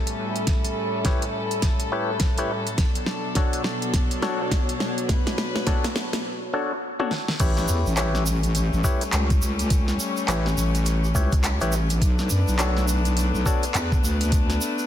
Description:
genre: glitch hop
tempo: 104 BPM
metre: 4/4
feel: swing 61% on 16ths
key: unclear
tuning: A4 = 440 Hz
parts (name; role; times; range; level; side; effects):
- warm chamber string section; sustained chords; 0.0-14.9 s; A2 to B4; -30 LUFS; left 2 dB; sidechain pumping
- warbly tape-like pad; texture; 0.0-6.2 s; B3 to B5; -31 LUFS; left 1 dB; chorus, built-in reverb, sidechain pumping
- pop drum kit; drums; 0.1-14.6 s; crash cymbal, handclaps, hi-hat, snare drum, toms; -29 LUFS; equal; studio reverb, soft clipping on snare
- electronic kick drum; drums; 0.5-14.5 s; none; -22 LUFS; equal; studio reverb
- auto-wah clav; stabs; 1.1-13.6 s; D4 to C#5; -30 LUFS; left 2 dB; sidechain pumping, dub echo
- wobble bass; bass; 7.4-14.6 s; A1 to F#2; -23 LUFS; equal; chorus
- egg shaker; percussion; 7.4-14.9 s; none; -34 LUFS; right 4 dB; none
room: light reverb, digital ambience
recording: dense, heavily limited modern master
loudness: -21 LUFS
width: side -11 dB against mid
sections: 0.0-7.4 A section; 7.4-14.9 B section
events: build-up 0.0-7.4; drum fill 0.0-6.2, 7.0-7.4; break 6.2-7.4; drop 7.4-14.9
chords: 0.0 A7; 2.8 Bm7; 7.4 A7; 12.0 Bm7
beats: | 0.48 1.05 1.63 2.21 | 2.78 3.36 3.94 4.51 | 5.09 5.67 6.25 6.82 | 7.40 7.98 8.55 9.13 | 9.71 10.28 10.86 11.44 | 12.02 12.59 13.17 13.74 | 14.32

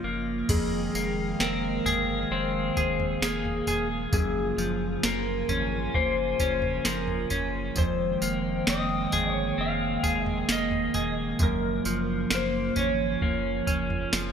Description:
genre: dream pop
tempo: 66 BPM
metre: 4/4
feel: straight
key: F phrygian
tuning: A4 = 440 Hz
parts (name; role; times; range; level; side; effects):
- warbly tape-like pad; sustained chords; 0.0-14.3 s; Db3 to G5; -32 LUFS; right 2 dB; chorus, built-in reverb
- clean electric guitar; arpeggios; 0.0-14.3 s; F2 to Ab4; -29 LUFS; left 1 dB; wide subtle chorus, digital delay
- round analog bass; bass; 0.0-14.3 s; Eb1 to Ab1; -36 LUFS; equal; none
- drifting glass-harmonics texture; texture; 0.0-6.8 s; Eb5 to Ab5; -42 LUFS; left 1 dB; chorus, built-in reverb, digital delay
- clean lap steel guitar; melody; 0.5-14.3 s; Ab4 to F5; -31 LUFS; left 2 dB; analog chorus, digital delay
- soft vintage rhythm box; drums; 0.5-14.3 s; crash cymbal, kick drum, snare drum, tambourine, toms; -29 LUFS; right 1 dB; gated reverb
room: moderate plate reverb, RT60 3.4 s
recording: bright 1980s-style digital production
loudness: -24 LUFS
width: side -7 dB against mid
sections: 0.5-14.3 A section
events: none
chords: 0.5 Fm11; 4.1 Gbmaj7; 7.8 Fm11; 11.4 Gbmaj7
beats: | 0.49 1.40 2.31 3.22 | 4.13 5.04 5.95 6.86 | 7.76 8.67 9.58 10.49 | 11.40 12.31 13.22 14.13

